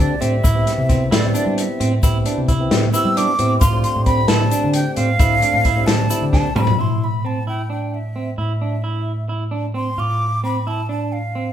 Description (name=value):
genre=progressive instrumental, band music in an uneven meter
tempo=264 BPM (eighths)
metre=7/8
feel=straight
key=A minor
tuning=A4 = 437 Hz
part: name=breathy jazz flute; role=melody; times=0.0-11.5 s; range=D5 to E6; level=-22 LUFS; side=right 1 dB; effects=none
part: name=mellow tonewheel organ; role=accompaniment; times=0.0-6.8 s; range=A3 to A4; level=-25 LUFS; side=left 2 dB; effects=slow rotary speaker
part: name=electric guitar at the edge of break-up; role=arpeggios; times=0.0-11.5 s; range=C4 to F4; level=-25 LUFS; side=right 3 dB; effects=none
part: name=fingered electric bass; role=bass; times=0.0-11.5 s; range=A2 to G3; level=-21 LUFS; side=equal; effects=none
part: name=open jazz drum kit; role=drums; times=0.2-6.8 s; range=hi-hat, kick drum, snare drum, toms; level=-19 LUFS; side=left 1 dB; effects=none
part: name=egg shaker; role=percussion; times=0.2-6.7 s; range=none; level=-33 LUFS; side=left 6 dB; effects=none
room=wet large studio reverb, RT60 1.0 s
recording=band playing live in one room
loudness=-16 LUFS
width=side -10 dB against mid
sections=0.0-6.8 A section; 6.8-11.5 B section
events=flute solo 0.0-6.8; drum fill 6.3-6.8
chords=0.4 Am7; 3.6 F6/A; 6.8 Am; 10.0 F6/A